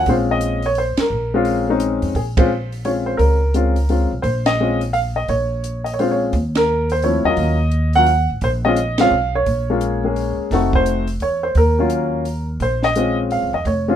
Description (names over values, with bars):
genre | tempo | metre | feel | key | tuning
jazz piano trio | 172 BPM | 3/4 | swing 63% on 8ths | Bb minor | A4 = 440 Hz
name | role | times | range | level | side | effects
dark baby grand piano | melody | 0.0-14.0 s | F3 to Gb5 | -18 LUFS | left 1 dB | none
upright bass | bass | 0.0-14.0 s | F1 to F2 | -21 LUFS | equal | none
compact cocktail drum kit | drums | 0.1-13.8 s | hi-hat, kick drum, ride cymbal, snare drum | -22 LUFS | right 2 dB | none
room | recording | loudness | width
light reverb | minimal, uncompressed stereo recording | -16 LUFS | side -10 dB against mid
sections
0.0-2.2 A section; 2.2-14.0 A section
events
band accent 0.9, 2.3, 4.4, 6.5, 8.9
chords
0.1 Bbm9; 6.3 Ebm9; 8.4 Bbm7; 10.5 F7b9; 11.6 Ebm9; 12.6 Bbm9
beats
| 0.07 0.41 0.76 | 1.11 1.46 1.81 | 2.15 2.50 2.85 | 3.20 3.55 3.89 | 4.24 4.59 4.94 | 5.29 5.64 5.98 | 6.33 6.68 7.03 | 7.38 7.73 8.08 | 8.43 8.77 9.12 | 9.47 9.82 10.17 | 10.52 10.87 11.21 | 11.56 11.91 12.26 | 12.61 12.96 13.30 | 13.65